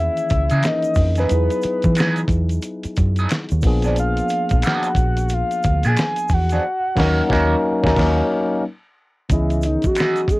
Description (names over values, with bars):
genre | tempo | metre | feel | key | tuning
R&B, neo-soul | 90 BPM | 4/4 | swing 62% on 16ths | unclear | A4 = 444 Hz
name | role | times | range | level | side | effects
soft octave-layered synth lead | melody | 0.0-10.4 s | D#4 to G#5 | -22 LUFS | equal | chorus, phaser
tine electric piano | accompaniment | 0.0-10.4 s | D#3 to D#5 | -23 LUFS | left 2 dB | cassette tape
deep dub fingered electric bass | bass | 0.0-9.9 s | A#1 to E3 | -19 LUFS | equal | none
dusty soul sampler-style drum kit | drums | 0.2-10.4 s | crash cymbal, hi-hat, kick drum, snare drum | -22 LUFS | equal | cassette tape
egg shaker and finger snaps | percussion | 0.2-10.4 s | none | -36 LUFS | left 1 dB | none
electric guitar at the edge of break-up | second line | 0.5-10.2 s | E3 to A#4 | -24 LUFS | right 3 dB | wah, cassette tape
room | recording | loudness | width
light reverb | home recording on cassette | -16 LUFS | side -20 dB against mid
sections
0.0-9.3 A section; 9.3-10.4 B section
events
band accent 6.6-9.3; soft synth lead solo 9.3-10.4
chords
0.0 C#m69; 1.3 Emaj9; 3.6 A#7b9; 6.6 D#m7; 8.6 N.C.; 9.3 C#m9